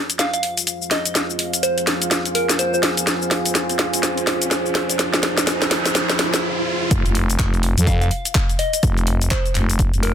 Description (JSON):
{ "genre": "bass house", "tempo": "125 BPM", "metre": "4/4", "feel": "swing 60% on 16ths", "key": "F minor", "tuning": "A4 = 440 Hz", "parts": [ { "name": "dark analog pad", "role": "sustained chords", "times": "0.0-10.1 s", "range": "F3 to C5", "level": "-27 LUFS", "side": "right 2 dB", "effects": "lush chorus, sidechain pumping" }, { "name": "riser and noise sweep", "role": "sound effects", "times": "1.8-6.9 s", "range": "none", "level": "-27 LUFS", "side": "right 2 dB", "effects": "none" }, { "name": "deep dark ambient pad", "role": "texture", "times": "0.5-6.4 s", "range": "F4 to Ab5", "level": "-28 LUFS", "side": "right 1 dB", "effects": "chorus, built-in reverb, sidechain pumping" }, { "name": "house drum kit", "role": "drums", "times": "0.1-10.1 s", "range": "cabasa, handclaps, hi-hat, snare drum", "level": "-20 LUFS", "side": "equal", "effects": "none" }, { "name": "soft synth bell", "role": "melody", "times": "0.2-2.8, 7.9-10.1 s", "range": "Bb4 to F5", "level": "-24 LUFS", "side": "left 1 dB", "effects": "chorus, phaser, ping-pong delay" }, { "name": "growling FM bass", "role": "bass", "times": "6.9-10.1 s", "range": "F1 to F2", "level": "-19 LUFS", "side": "equal", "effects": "tube saturation, sidechain pumping" }, { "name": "electronic kick drum", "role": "drums", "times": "6.9-9.9 s", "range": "none", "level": "-20 LUFS", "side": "equal", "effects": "none" } ], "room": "light reverb", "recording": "dense, heavily limited modern master", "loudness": "-17 LUFS", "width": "side -9 dB against mid", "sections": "0.0-6.9 A section; 6.9-10.1 B section", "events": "build-up 0.0-6.9; drum fill 0.0-6.4; riser 1.8-6.9; noise sweep 5.0-6.9; break 6.4-6.9; drop 6.9-10.1", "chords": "0.0 Fm" }